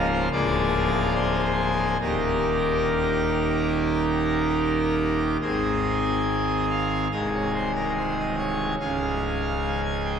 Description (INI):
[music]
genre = classical, chorale-style piece for pipe organ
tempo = 71 BPM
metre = 4/4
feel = straight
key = Ab major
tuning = A4 = 439 Hz
[part]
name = pipe organ, full organ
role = solo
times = 0.0-10.2 s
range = C1 to Ab5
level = -22 LUFS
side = equal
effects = none
[sound]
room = wet church reverb, RT60 3.8 s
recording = minimal, uncompressed stereo recording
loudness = -22 LUFS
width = side -7 dB against mid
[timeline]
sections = 0.0-10.2 A section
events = none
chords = 0.3 Bb7/D; 2.0 Eb; 5.4 Ab; 7.1 Ab/C; 8.8 Db